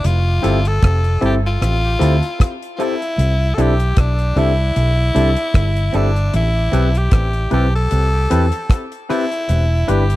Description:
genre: lovers rock reggae.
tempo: 76 BPM.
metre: 4/4.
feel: swing 55% on 16ths.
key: unclear.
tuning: A4 = 441 Hz.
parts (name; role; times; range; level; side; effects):
raspy tenor saxophone; melody; 0.0-10.2 s; D4 to A4; -22 LUFS; left 1 dB; tape echo.
vintage muted fingered electric bass; bass; 0.0-10.2 s; E1 to E2; -16 LUFS; equal; none.
damped 70s drum kit; drums; 0.0-10.2 s; hi-hat, kick drum, rim click; -16 LUFS; equal; none.
barky tine electric piano; accompaniment; 0.4-10.0 s; C4 to B4; -22 LUFS; left 5 dB; overdrive, tape echo.
electric guitar through a small old amp; stabs; 0.4-10.0 s; C4 to B4; -26 LUFS; right 6 dB; spring reverb.
room: little or no reverb.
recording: dry, close 1970s-style studio recording.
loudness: -14 LUFS.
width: side -16 dB against mid.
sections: 0.0-10.2 A section.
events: none.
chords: 0.0 Fmaj7; 3.2 C6; 6.3 Am7; 9.5 Em7.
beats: | 0.04 0.83 1.61 2.40 | 3.19 3.98 4.76 5.55 | 6.34 7.13 7.91 8.70 | 9.49.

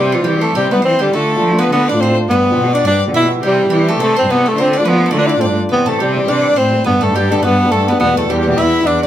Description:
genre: celtic folk, Celtic reel.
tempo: 209 BPM.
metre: 4/4.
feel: swing 57% on 8ths.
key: unclear.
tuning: A4 = 440 Hz.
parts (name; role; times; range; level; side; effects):
breathy tenor saxophone; melody; 0.0-9.1 s; F3 to E4; -14 LUFS; equal; none.
bowl-back mandolin; second line; 0.0-9.1 s; F4 to E5; -22 LUFS; right 1 dB; none.
bright fiddle; second line; 0.0-9.1 s; F4 to E5; -23 LUFS; left 4 dB; none.
fingerpicked old ladder-braced acoustic guitar; accompaniment; 0.0-9.1 s; E2 to G4; -19 LUFS; left 1 dB; none.
warm cello; bass; 0.0-9.1 s; E2 to G3; -18 LUFS; right 1 dB; none.
room: moderate studio reverb, RT60 0.7 s.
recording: none.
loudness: -11 LUFS.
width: side -11 dB against mid.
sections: 0.0-5.7 A section; 5.7-9.1 B section.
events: none.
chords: 0.0 C; 1.1 Dm; 2.3 G7; 3.4 C; 4.6 Dm; 5.7 C; 6.9 G; 8.0 Em.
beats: 0.27 0.56 0.85 | 1.14 1.42 1.71 2.00 | 2.28 2.57 2.85 3.14 | 3.43 3.71 4.00 4.29 | 4.57 4.86 5.14 5.43 | 5.72 6.00 6.29 6.58 | 6.86 7.15 7.44 7.72 | 8.01 8.30 8.58 8.87.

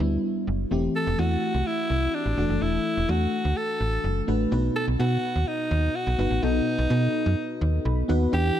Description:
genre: 1980s-style pop.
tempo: 126 BPM.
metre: 4/4.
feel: straight.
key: unclear.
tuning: A4 = 439 Hz.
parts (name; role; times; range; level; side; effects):
raspy alto saxophone; melody; 0.0-8.6 s; D4 to A4; -28 LUFS; equal; ping-pong delay.
FM electric piano with soft pad layer; accompaniment; 0.0-8.6 s; G2 to B5; -27 LUFS; left 1 dB; chorus.
slap-like FM bass; bass; 0.0-8.5 s; E1 to B2; -24 LUFS; equal; none.
room: light reverb, studio ambience.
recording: none.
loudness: -22 LUFS.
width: side -10 dB against mid.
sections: 0.7-8.3 A section.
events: FM electric piano fill 7.6-8.3.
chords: 0.0 G6; 0.7 Am7/E; 2.4 D/E; 4.5 B.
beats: 0.23 | 0.71 1.19 1.66 2.14 | 2.62 3.09 3.57 4.04 | 4.52 5.00 5.47 5.95 | 6.42 6.90 7.38 7.85 | 8.33.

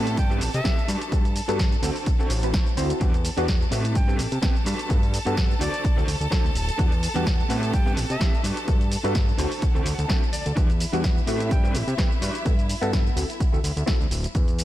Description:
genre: filtered disco house.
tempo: 127 BPM.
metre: 4/4.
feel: swing 55% on 16ths.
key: unclear.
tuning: A4 = 443 Hz.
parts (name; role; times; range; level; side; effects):
clear studio violin section; sustained chords; 0.0-14.4 s; E4 to A5; -34 LUFS; equal; sidechain pumping.
electric guitar at the edge of break-up; riff; 0.0-12.4 s; C4 to A5; -34 LUFS; right 1 dB; tremolo, sidechain pumping.
fat analog bass; bass; 0.0-14.6 s; D1 to C3; -27 LUFS; equal; sidechain pumping.
punchy analog drum machine; drums; 0.1-14.6 s; hi-hat, shaker, snare drum; -31 LUFS; equal; sidechain pumping on hats, sidechain pumping on perc.
breathy bright jazz flute; melody; 0.2-0.9, 4.0-8.4, 11.5-11.7 s; D5 to G5; -35 LUFS; equal; sidechain pumping, ping-pong delay.
electronic kick drum; drums; 0.2-14.5 s; none; -23 LUFS; equal; none.
overdriven reed electric piano; accompaniment; 0.3-14.0 s; G3 to C5; -31 LUFS; equal; phaser, sidechain pumping.
room: little or no reverb.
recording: none.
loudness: -21 LUFS.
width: side -14 dB against mid.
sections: 0.0-14.6 A section.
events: clean electric guitar fill 9.2-10.6.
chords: 0.0 Am9; 0.9 Gmaj7; 1.8 D9; 3.0 Em7; 3.7 Am9; 4.7 Gmaj7; 5.6 D9; 6.8 Em7; 7.5 Am9; 8.4 Gmaj7; 9.4 D9; 10.6 Em7; 11.3 Am9; 12.2 Gmaj7; 13.2 D9.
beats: 0.17 0.65 | 1.12 1.59 2.06 2.54 | 3.01 3.48 3.95 4.43 | 4.90 5.37 5.84 6.32 | 6.79 7.26 7.73 8.21 | 8.68 9.15 9.62 10.10 | 10.57 11.04 11.51 11.98 | 12.46 12.93 13.40 13.88 | 14.35.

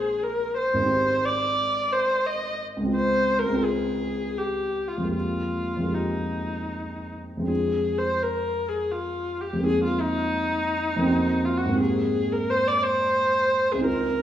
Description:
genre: classical, impressionist duo for viola and grand piano.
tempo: 75-94 BPM.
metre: 3/4.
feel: rubato.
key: F dorian.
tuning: A4 = 440 Hz.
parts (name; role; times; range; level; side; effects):
warm viola; melody; 0.0-14.2 s; Eb4 to Eb5; -24 LUFS; left 1 dB; none.
warm concert grand piano; accompaniment; 0.0-14.2 s; Ab1 to G4; -27 LUFS; right 1 dB; none.
room: wet recital hall reverb, RT60 1.7 s.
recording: small room ambience.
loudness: -22 LUFS.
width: side -11 dB against mid.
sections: 0.0-7.5 A section; 7.5-14.2 A section.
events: none.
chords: 0.0 Bb9; 0.9 Abmaj7; 2.9 Dbmaj7; 5.1 Fm11; 7.5 Fm6; 9.6 Abadd9/F; 11.1 Gbmaj7#11/F; 11.8 Abmaj9.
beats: 0.22 | 0.90 1.58 2.27 | 2.94 3.63 4.36 | 5.14 5.94 6.73 | 7.50 8.22 8.93 | 9.65 10.37 11.08 | 11.79 12.49 13.18 | 13.86.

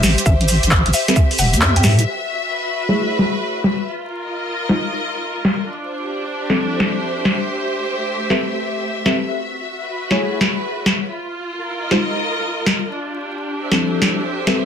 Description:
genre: UK garage, two-step garage.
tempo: 133 BPM.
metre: 4/4.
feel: swing 66% on 16ths.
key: unclear.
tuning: A4 = 440 Hz.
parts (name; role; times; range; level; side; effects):
mallet-like synth pluck; melody; 0.0-1.9 s; E5 to G5; -26 LUFS; left 1 dB; chorus, tape echo.
deep mellow chord stab; stabs; 0.0-14.6 s; F3 to E5; -22 LUFS; equal; chorus, digital delay.
deep soft wobble bass; bass; 0.0-2.0 s; E1 to A2; -16 LUFS; equal; chorus.
punchy analog drum machine; drums; 0.0-14.6 s; handclaps, hi-hat, shaker, snare drum; -17 LUFS; left 1 dB; low-pass filter on snare, low-pass filter on hats, low-pass filter on perc, low-pass filter on room.
rich studio string section; texture; 0.0-14.7 s; A3 to E5; -23 LUFS; equal; sidechain pumping.
electronic kick drum; drums; 0.3-1.3 s; none; -15 LUFS; equal; none.
room: wet studio reverb, RT60 0.6 s.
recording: dense, heavily limited modern master, vinyl crackle.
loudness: -17 LUFS.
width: side -8 dB against mid.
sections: 0.0-2.1 A section; 2.1-14.7 B section.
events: kick drops out 1.6-2.1; filter sweep on drum 2.1-14.7.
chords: 0.0 Am7; 2.1 F#m7; 3.9 F7(no3); 5.7 Dm7; 7.3 Am7; 9.3 F#m7; 11.1 F7(no3); 12.9 Dm7.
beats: | 0.26 0.71 1.16 1.61 | 2.06 2.52 2.97 3.42 | 3.87 4.32 4.77 5.22 | 5.67 6.12 6.58 7.03 | 7.48 7.93 8.38 8.83 | 9.28 9.73 10.18 10.63 | 11.09 11.54 11.99 12.44 | 12.89 13.34 13.79 14.24.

